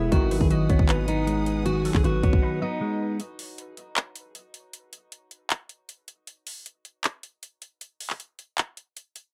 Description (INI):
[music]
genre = hip hop, trap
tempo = 156 BPM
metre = 4/4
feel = half-time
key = unclear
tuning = A4 = 440 Hz
[part]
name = fingerpicked steel-string acoustic guitar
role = melody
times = 0.0-3.2 s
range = D#4 to G#4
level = -31 LUFS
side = equal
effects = low-pass filter, tape echo
[part]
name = warbly dusty pluck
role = second line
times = 0.0-3.2 s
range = G#4 to D#5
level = -39 LUFS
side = equal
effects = chorus, tape echo
[part]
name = clean electric guitar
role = accompaniment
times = 0.0-3.2 s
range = D#3 to B4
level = -30 LUFS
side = equal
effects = low-pass filter
[part]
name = clear symphonic string section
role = sustained chords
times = 0.0-3.2 s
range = B4 to D#6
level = -45 LUFS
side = equal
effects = none
[part]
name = growling 808-style bass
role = bass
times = 0.0-2.4 s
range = E1 to G#1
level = -29 LUFS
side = equal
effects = none
[part]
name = warm brass ensemble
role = stabs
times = 0.1-0.5 s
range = B1 to D#3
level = -34 LUFS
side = equal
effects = none
[part]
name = trap drum kit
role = drums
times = 0.1-9.2 s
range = handclaps, hi-hat, kick drum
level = -28 LUFS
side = equal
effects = none
[sound]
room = little or no reverb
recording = dark, warm production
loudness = -25 LUFS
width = mono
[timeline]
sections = 0.0-3.2 A section; 3.2-9.3 B section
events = break 2.4-3.2, 3.2-9.3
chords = 0.1 G#m7; 3.2 N.C.